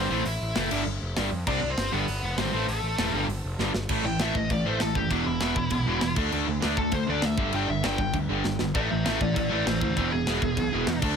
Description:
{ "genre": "punk rock", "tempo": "198 BPM", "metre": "4/4", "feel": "straight", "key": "unclear", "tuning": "A4 = 441 Hz", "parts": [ { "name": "nasal lead guitar with a parked wah", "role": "melody", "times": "0.0-11.0 s", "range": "A3 to G5", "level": "-31 LUFS", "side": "left 2 dB", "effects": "overdrive, digital delay" }, { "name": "distorted electric guitar", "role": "riff", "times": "0.0-11.2 s", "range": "E2 to D4", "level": "-30 LUFS", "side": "left 13 dB", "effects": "distortion" }, { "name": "distorted electric guitar", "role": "riff", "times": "0.0-11.2 s", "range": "E2 to D4", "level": "-30 LUFS", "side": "right 12 dB", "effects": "distortion" }, { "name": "fuzz picked electric bass", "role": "bass", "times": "0.0-11.1 s", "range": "E1 to F2", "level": "-31 LUFS", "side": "equal", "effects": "overdrive" }, { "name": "tight metal drum kit", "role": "drums", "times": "0.3-11.1 s", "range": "crash cymbal, hi-hat, kick drum, snare drum", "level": "-32 LUFS", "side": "equal", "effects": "none" } ], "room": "light reverb", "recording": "none", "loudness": "-24 LUFS", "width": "side -6 dB against mid", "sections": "0.0-3.9 A section; 3.9-11.2 B section", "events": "drum fill 3.6-3.9, 8.4-8.8; lead electric guitar solo 3.9-11.2", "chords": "0.1 Am; 0.7 G5; 1.5 C5; 1.9 G; 2.5 Am; 3.1 G5; 3.9 A5; 5.1 E5; 6.2 D5; 7.4 G5; 8.8 A5; 10.0 E", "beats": "| 0.26 0.56 0.86 1.17 | 1.47 1.77 2.08 2.38 | 2.68 2.99 3.29 3.59 | 3.90 4.20 4.50 4.81 | 5.11 5.41 5.72 6.02 | 6.32 6.63 6.93 7.23 | 7.54 7.84 8.14 8.45 | 8.75 9.05 9.36 9.66 | 9.96 10.27 10.57 10.88" }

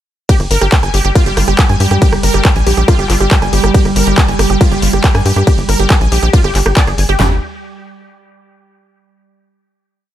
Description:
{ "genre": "psychedelic trance", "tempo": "139 BPM", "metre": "4/4", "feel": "straight", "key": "G phrygian", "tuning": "A4 = 439 Hz", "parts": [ { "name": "evolving wavetable pad", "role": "sustained chords", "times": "1.0-7.2 s", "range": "G3", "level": "-20 LUFS", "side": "right 4 dB", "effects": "chorus, built-in reverb, sidechain pumping" }, { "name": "wide unison pluck", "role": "riff", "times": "0.3-7.4 s", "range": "F4 to Ab5", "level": "-17 LUFS", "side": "right 1 dB", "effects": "auto-pan, sidechain pumping, dub echo" }, { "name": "big-room dance drum kit", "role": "drums", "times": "0.3-7.3 s", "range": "handclaps, kick drum, snare drum, toms", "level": "-11 LUFS", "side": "equal", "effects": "none" }, { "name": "techno drum kit", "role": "drums", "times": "0.3-7.2 s", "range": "handclaps, hi-hat, ride cymbal, rim click", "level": "-18 LUFS", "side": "equal", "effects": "overdrive" }, { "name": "tight sequencer bass", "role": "bass", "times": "0.4-7.4 s", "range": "G1 to G2", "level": "-14 LUFS", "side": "equal", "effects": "none" } ], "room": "little or no reverb", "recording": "none", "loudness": "-9 LUFS", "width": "side -12 dB against mid", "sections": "0.3-7.2 drop; 7.2-8.9 final note", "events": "drop 0.3-7.2", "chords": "0.3 G5; 7.2 N.C.", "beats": "| 0.29 0.72 1.16 1.59 | 2.02 2.45 2.88 3.31 | 3.75 4.18 4.61 5.04 | 5.47 5.90 6.33 6.77 | 7.20" }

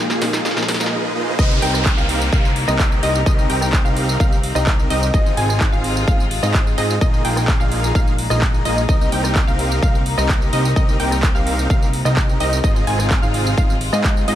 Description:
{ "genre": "EDM, festival progressive house", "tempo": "128 BPM", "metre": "4/4", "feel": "straight", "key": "C minor", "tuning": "A4 = 440 Hz", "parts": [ { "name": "bright chamber string section", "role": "sustained chords", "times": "0.0-14.4 s", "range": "Bb2 to Ab4", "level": "-27 LUFS", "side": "left 2 dB", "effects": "sidechain pumping" }, { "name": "supersaw chords", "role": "riff", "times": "0.0-14.4 s", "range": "Bb3 to Ab5", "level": "-24 LUFS", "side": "right 1 dB", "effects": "vintage 12-bit sampler grit, sidechain pumping, ping-pong delay" }, { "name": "riser and downlifter", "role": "sound effects", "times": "0.0-5.1 s", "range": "none", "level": "-26 LUFS", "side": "equal", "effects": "none" }, { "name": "big-room dance drum kit", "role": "drums", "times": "0.1-14.4 s", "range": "crash cymbal, handclaps, hi-hat, rim click, snare drum, tambourine", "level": "-25 LUFS", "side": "right 1 dB", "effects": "high-pass filter on snare, high-pass filter on perc, high-pass filter on hats, high-pass filter on cymbals" }, { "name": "dark grand piano", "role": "accompaniment", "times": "0.2-0.9 s", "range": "Bb2 to Eb4", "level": "-26 LUFS", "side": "left 1 dB", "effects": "sidechain pumping, ping-pong delay" }, { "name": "wide unison pluck", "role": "arpeggios", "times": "1.4-14.4 s", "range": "Eb5 to Ab5", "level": "-25 LUFS", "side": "equal", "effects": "sidechain pumping, ping-pong delay" }, { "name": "fat analog bass", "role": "bass", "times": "1.4-14.4 s", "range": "Ab1 to Ab2", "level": "-22 LUFS", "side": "equal", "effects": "sidechain pumping" }, { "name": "electronic kick drum", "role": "drums", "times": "1.4-14.1 s", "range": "none", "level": "-17 LUFS", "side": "equal", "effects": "none" } ], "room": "light reverb", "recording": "none", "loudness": "-15 LUFS", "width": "side -12 dB against mid", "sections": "0.0-1.4 A section; 1.4-14.4 B section", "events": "build-up 0.0-1.4; drum fill 0.0-0.9; riser 0.0-1.4; drop 1.4-14.4", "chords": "0.0 Bb7sus4; 1.4 Cm7; 5.1 Ab6; 7.0 Bb7sus4; 8.9 Cm7; 12.6 Ab6", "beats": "0.45 0.92 | 1.39 1.86 2.33 2.79 | 3.26 3.73 4.20 4.67 | 5.14 5.61 6.08 6.54 | 7.01 7.48 7.95 8.42 | 8.89 9.36 9.82 10.29 | 10.76 11.23 11.70 12.17 | 12.64 13.11 13.57 14.04" }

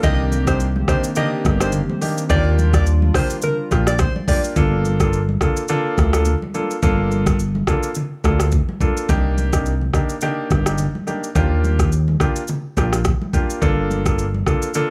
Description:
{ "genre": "afrobeats", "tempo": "106 BPM", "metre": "4/4", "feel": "swing 55% on 16ths", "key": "G minor", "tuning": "A4 = 440 Hz", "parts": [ { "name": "soft struck synth lead", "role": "melody", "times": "0.0-4.4 s", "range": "Bb4 to Eb5", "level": "-28 LUFS", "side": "equal", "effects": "chorus, tape echo" }, { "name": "clear grand piano", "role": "accompaniment", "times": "0.0-14.9 s", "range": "Bb3 to A4", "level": "-26 LUFS", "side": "equal", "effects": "none" }, { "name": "hollow soft pad", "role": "sustained chords", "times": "0.0-4.5 s", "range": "Eb3 to G4", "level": "-31 LUFS", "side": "equal", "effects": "chorus" }, { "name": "fat analog bass", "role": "bass", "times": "0.0-14.4 s", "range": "G1 to Eb2", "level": "-20 LUFS", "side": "equal", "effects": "none" }, { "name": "afro-pop drum kit", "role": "drums", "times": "0.0-14.9 s", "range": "hi-hat, kick drum, rim click, shaker", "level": "-22 LUFS", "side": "equal", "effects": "none" }, { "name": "congas", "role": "percussion", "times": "0.0-14.9 s", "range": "none", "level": "-29 LUFS", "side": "equal", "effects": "none" } ], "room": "little or no reverb", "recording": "small room ambience", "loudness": "-19 LUFS", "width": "mono", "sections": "0.0-4.6 A section; 4.6-14.9 B section", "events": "none", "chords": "0.0 Cm7; 2.3 Ebmaj9; 4.6 Gm7; 9.1 Cm7; 11.4 Ebmaj9; 13.6 Gm7", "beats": "| 0.04 0.60 1.17 1.73 | 2.30 2.87 3.43 4.00 | 4.56 5.13 5.70 6.26 | 6.83 7.39 7.96 8.53 | 9.09 9.66 10.22 10.79 | 11.36 11.92 12.49 13.05 | 13.62 14.19 14.75" }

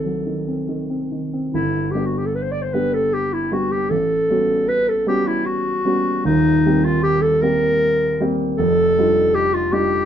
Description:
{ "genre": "classical, impressionist duo for clarinet and grand piano", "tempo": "77 BPM", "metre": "3/4", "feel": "uneven beats, rubato", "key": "G major", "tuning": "A4 = 440 Hz", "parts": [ { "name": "warm clarinet", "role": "melody", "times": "0.0-10.1 s", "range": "Eb4 to D5", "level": "-18 LUFS", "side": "left 1 dB", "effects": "none" }, { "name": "warm concert grand piano", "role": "accompaniment", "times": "0.0-10.1 s", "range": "Eb1 to G4", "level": "-21 LUFS", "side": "right 2 dB", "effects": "none" } ], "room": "light reverb", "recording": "none", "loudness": "-16 LUFS", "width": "side -9 dB against mid", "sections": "0.0-1.5 A section; 1.5-10.1 B section", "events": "none", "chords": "0.0 Cm6; 1.5 G; 3.9 A13; 6.3 Eb6; 8.6 F13", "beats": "0.69 | 1.54 2.34 3.12 | 3.91 4.68 5.47 | 6.26 7.05 7.82 | 8.60 9.36" }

